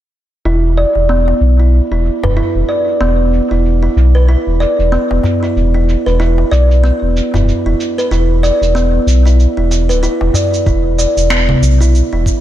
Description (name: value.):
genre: organic downtempo.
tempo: 94 BPM.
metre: 4/4.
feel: swing 58% on 16ths.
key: unclear.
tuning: A4 = 442 Hz.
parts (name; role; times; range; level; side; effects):
kalimba; arpeggios; 0.5-12.4 s; B3 to D5; -15 LUFS; right 1 dB; low-pass filter, analog delay.
warm sub bass; bass; 0.5-12.3 s; D1 to B1; -12 LUFS; equal; tube saturation, sidechain pumping.
electronic shaker, finger snaps and congas; drums; 0.5-12.4 s; none; -20 LUFS; equal; low-pass filter on perc, low-pass filter on snare, low-pass filter on room.
darbuka; percussion; 1.0-11.9 s; none; -19 LUFS; left 1 dB; none.
electronic kick drum; drums; 10.7-12.4 s; none; -14 LUFS; equal; none.
room: light reverb.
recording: none.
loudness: -10 LUFS.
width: side -12 dB against mid.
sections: 0.5-12.4 A section.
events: none.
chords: 0.5 E5.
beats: | 0.46 1.09 1.73 2.37 | 3.01 3.65 4.29 4.92 | 5.56 6.20 6.84 7.48 | 8.11 8.75 9.39 10.03 | 10.67 11.31 11.94.